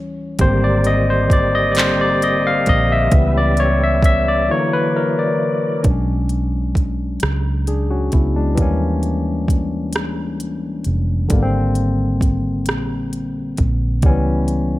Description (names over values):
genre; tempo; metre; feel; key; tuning
slow six-eight R&B; 44 BPM (dotted quarters); 6/8; straight; unclear; A4 = 440 Hz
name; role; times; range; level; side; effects
barky tine electric piano; accompaniment; 0.0-14.8 s; D3 to E#5; -18 LUFS; left 2 dB; overdrive
vintage muted fingered electric bass; bass; 0.0-14.8 s; E#1 to D#2; -20 LUFS; equal; none
tonewheel organ; sustained chords; 0.4-5.8 s; F#3 to E5; -26 LUFS; right 2 dB; chorus vibrato, slow rotary speaker
smooth R&B drum kit; drums; 0.4-14.7 s; handclaps, hi-hat, kick drum, rim click; -18 LUFS; right 1 dB; none
room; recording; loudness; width
light reverb, digital ambience; none; -15 LUFS; side -16 dB against mid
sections
0.0-5.8 A section; 5.8-14.8 B section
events
tine electric piano solo 0.0-5.8; break 4.5-5.8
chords
0.4 G#maj9#11; 3.1 C#m7b5; 4.5 F#7b13; 5.8 Bm69; 8.6 D#7b9; 11.3 G#maj9#11; 14.0 C#m7b5